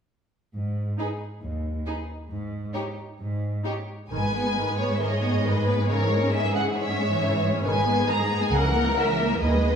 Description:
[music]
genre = quick classical-period movement for string orchestra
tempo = 135 BPM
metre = 4/4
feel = rubato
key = G# minor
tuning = A4 = 439 Hz
[part]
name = warm studio cello section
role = bass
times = 0.5-9.8 s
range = C#2 to G#2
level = -28 LUFS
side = right 1 dB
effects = none
[part]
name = rich studio violin section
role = melody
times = 1.0-9.8 s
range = B4 to A#5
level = -28 LUFS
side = equal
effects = none
[part]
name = rich studio violin section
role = second line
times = 1.0-9.8 s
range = G4 to C#5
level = -29 LUFS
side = left 2 dB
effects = none
[part]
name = rich studio viola section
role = accompaniment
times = 1.0-9.8 s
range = C#3 to A#4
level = -28 LUFS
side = equal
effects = none
[part]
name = dark studio double bass section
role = bass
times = 4.1-4.5, 7.7-9.8 s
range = G#1 to D#2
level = -27 LUFS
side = right 1 dB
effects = none
[sound]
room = wet stone room reverb, RT60 1.3 s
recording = heard from further back in the room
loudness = -23 LUFS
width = side -7 dB against mid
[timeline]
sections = 0.5-4.1 A section; 4.1-9.8 B section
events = none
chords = 0.5 G#5; 2.3 N.C.; 4.1 G#m; 5.9 C#m/G#; 7.6 G#m; 8.5 A#dim/C#

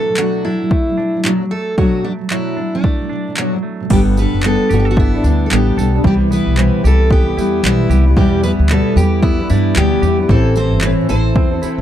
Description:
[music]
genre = acoustic pop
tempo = 113 BPM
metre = 4/4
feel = swing 60% on 16ths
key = G major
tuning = A4 = 440 Hz
[part]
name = picked steel-string acoustic guitar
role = melody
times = 0.0-11.8 s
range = D4 to C5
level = -20 LUFS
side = equal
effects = none
[part]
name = fingerpicked steel-string acoustic guitar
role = accompaniment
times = 0.0-11.8 s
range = E2 to A4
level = -17 LUFS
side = left 1 dB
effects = double-tracked left and right
[part]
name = semi-hollow electric guitar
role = arpeggios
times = 0.0-11.8 s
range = E3 to A4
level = -26 LUFS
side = right 7 dB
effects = none
[part]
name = 80s electronic pad drums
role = drums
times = 0.2-11.8 s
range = crash cymbal, handclaps, kick drum, tambourine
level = -16 LUFS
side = equal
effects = overdrive
[part]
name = upright bass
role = bass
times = 3.9-11.8 s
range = F#1 to G2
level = -15 LUFS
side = equal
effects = none
[sound]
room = little or no reverb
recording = dry, close 1970s-style studio recording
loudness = -12 LUFS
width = side -11 dB against mid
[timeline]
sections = 0.0-3.9 A section; 3.9-11.8 B section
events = none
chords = 0.0 Bm7; 3.9 Gadd9; 6.0 Cmaj7; 8.2 Em; 10.3 Am

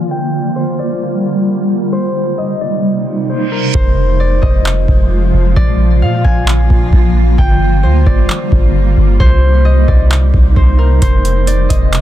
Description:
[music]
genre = hip hop, atmospheric cloud-rap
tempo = 132 BPM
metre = 4/4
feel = half-time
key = F dorian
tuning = A4 = 441 Hz
[part]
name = Celtic harp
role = melody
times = 0.0-12.0 s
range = Bb4 to Ab5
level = -20 LUFS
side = left 4 dB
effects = digital delay
[part]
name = granular cloud pad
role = sustained chords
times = 0.0-12.0 s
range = C3 to F4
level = -17 LUFS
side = right 1 dB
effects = built-in reverb, sidechain pumping
[part]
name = wind-like tuned noise texture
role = texture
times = 0.0-12.0 s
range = G3 to D5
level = -28 LUFS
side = left 4 dB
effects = built-in reverb
[part]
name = reverse cymbal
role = sound effects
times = 3.4-3.7 s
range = none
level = -24 LUFS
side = right 7 dB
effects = none
[part]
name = warm 808-style bass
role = bass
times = 3.7-12.0 s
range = F1 to Bb2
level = -11 LUFS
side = equal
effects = none
[part]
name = booming analog drum machine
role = drums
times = 3.7-12.0 s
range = handclaps, hi-hat, kick drum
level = -12 LUFS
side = equal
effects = none
[sound]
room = little or no reverb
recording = dense, heavily limited modern master, low-pass filter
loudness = -10 LUFS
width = side -12 dB against mid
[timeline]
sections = 0.0-3.7 A section; 3.7-12.0 B section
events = filter sweep 0.0-3.7; reverse cymbal 3.4-3.7; hi-hats muted 3.7-11.0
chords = 0.1 Gm7; 1.9 Cm7; 3.7 Fm; 5.6 Bb; 7.4 Gm7; 9.2 Cm7; 11.0 Fm

